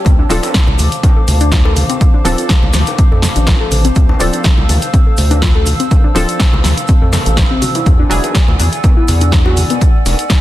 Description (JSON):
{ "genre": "deep house", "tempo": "123 BPM", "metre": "4/4", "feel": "swing 53% on 16ths", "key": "D minor", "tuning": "A4 = 440 Hz", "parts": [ { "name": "warbly tape-like pad", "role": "sustained chords", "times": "0.0-10.4 s", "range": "C5 to E6", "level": "-22 LUFS", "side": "right 1 dB", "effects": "chorus, built-in reverb, sidechain pumping" }, { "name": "bongos and congas", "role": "percussion", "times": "0.0-10.4 s", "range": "none", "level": "-23 LUFS", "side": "left 1 dB", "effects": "sidechain pumping on perc" }, { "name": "warbly dusty pluck", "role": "arpeggios", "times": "0.1-9.7 s", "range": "B3 to C5", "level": "-21 LUFS", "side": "left 4 dB", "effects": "chorus, sidechain pumping, digital delay" }, { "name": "round analog bass", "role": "bass", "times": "0.1-10.1 s", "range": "D1 to F2", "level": "-14 LUFS", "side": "equal", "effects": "sidechain pumping" }, { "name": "deep house drum kit", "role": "drums", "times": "0.1-10.4 s", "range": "hi-hat, snare drum", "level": "-19 LUFS", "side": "equal", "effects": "none" }, { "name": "electronic kick drum", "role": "drums", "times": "0.1-10.4 s", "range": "none", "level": "-11 LUFS", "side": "equal", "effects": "none" }, { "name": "tube shaker", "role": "percussion", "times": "0.1-10.4 s", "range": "none", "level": "-27 LUFS", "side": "right 3 dB", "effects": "none" }, { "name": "filtered dub chord stab", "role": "stabs", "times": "0.3-9.5 s", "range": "F3 to A4", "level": "-20 LUFS", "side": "equal", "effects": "chorus, sidechain pumping, ping-pong delay" } ], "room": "digital ambience", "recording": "dense, heavily limited modern master, lossy compression artefacts", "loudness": "-9 LUFS", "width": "side -14 dB against mid", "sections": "0.0-10.4 A section", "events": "none", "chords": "0.1 Dm7; 7.6 E9" }